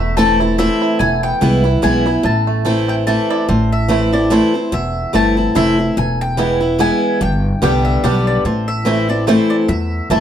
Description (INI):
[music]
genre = bluegrass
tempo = 145 BPM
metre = 3/4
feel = swing 56% on 8ths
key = A minor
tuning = A4 = 440 Hz
[part]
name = bluegrass banjo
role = melody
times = 0.0-10.2 s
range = E3 to A4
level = -22 LUFS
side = right 8 dB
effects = none
[part]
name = mandolin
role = melody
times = 0.0-10.2 s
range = C5 to A5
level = -21 LUFS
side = left 4 dB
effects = none
[part]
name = picked steel-string acoustic guitar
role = accompaniment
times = 0.0-10.2 s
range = E2 to G4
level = -16 LUFS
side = equal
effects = none
[part]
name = upright bass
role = bass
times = 0.0-10.2 s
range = E1 to E2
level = -19 LUFS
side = equal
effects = none
[sound]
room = moderate studio reverb, RT60 0.8 s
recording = dark, warm production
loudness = -13 LUFS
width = side -9 dB against mid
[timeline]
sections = 0.0-3.5 A section; 3.5-10.2 A section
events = none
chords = 0.0 Am; 1.0 E; 2.2 Am; 6.0 E; 7.2 G; 8.5 Am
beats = 0.17 0.58 | 1.00 1.41 1.83 | 2.24 2.66 3.07 | 3.49 3.90 4.32 | 4.73 5.14 5.56 | 5.97 6.39 6.80 | 7.21 7.63 8.04 | 8.46 8.87 9.28 | 9.70 10.11